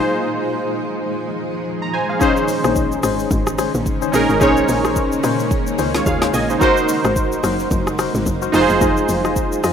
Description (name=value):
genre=amapiano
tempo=109 BPM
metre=4/4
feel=swing 58% on 16ths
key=Bb minor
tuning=A4 = 440 Hz
part: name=warm analog keys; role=accompaniment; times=0.0-9.7 s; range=Db4 to Bb5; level=-18 LUFS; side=right 2 dB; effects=chorus
part: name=granular cloud pad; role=sustained chords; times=0.0-9.7 s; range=Bb2 to C5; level=-25 LUFS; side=left 2 dB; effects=built-in reverb
part: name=percussive organ stab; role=stabs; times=2.2-9.7 s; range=Db4 to Eb5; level=-23 LUFS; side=left 15 dB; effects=chorus, ping-pong delay
part: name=deep house drum kit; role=drums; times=2.2-9.7 s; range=hi-hat, kick drum, rim click, shaker, snare drum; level=-22 LUFS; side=equal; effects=none
part: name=tight log drum bass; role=bass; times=2.6-9.7 s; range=F1 to Bb2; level=-23 LUFS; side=left 1 dB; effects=none
room=moderate studio reverb, RT60 0.6 s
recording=rough home demo mix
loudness=-15 LUFS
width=side -8 dB against mid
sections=0.0-9.7 A section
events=break 0.0-2.2; synth keys fill 5.8-6.6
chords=0.0 Fm7; 2.2 Bbm11; 6.6 Ab9; 8.5 Fm7